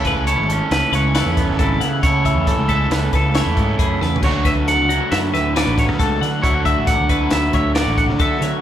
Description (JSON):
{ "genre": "math rock and midwest emo", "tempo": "136 BPM", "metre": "5/4", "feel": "straight", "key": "A major", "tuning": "A4 = 440 Hz", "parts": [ { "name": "twangy electric guitar", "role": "melody", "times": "0.0-8.5 s", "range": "A4 to F#5", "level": "-22 LUFS", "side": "equal", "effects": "none" }, { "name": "twangy electric guitar", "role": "accompaniment", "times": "0.0-8.6 s", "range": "A2 to F#4", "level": "-25 LUFS", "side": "right 4 dB", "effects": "phaser" }, { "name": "crunchy overdriven guitar", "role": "riff", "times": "0.0-8.6 s", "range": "C#3 to A4", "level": "-23 LUFS", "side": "right 1 dB", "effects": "none" }, { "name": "fuzz fingered electric bass", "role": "bass", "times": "0.0-8.5 s", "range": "G#1 to D3", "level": "-21 LUFS", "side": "equal", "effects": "overdrive" }, { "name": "compact cocktail drum kit", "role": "drums", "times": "0.0-8.5 s", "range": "crash cymbal, hi-hat, kick drum, snare drum, splash cymbal, toms", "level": "-21 LUFS", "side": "equal", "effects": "none" }, { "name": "twelve-string electric guitar", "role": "arpeggios", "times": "0.1-8.6 s", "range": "F#4 to F#5", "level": "-25 LUFS", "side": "left 7 dB", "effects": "none" } ], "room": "moderate large studio reverb, RT60 1.4 s", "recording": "band playing live in one room", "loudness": "-15 LUFS", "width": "side -10 dB against mid", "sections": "0.0-8.6 A section", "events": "drum fill 4.0", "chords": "0.0 Amaj9; 4.2 Dmaj9" }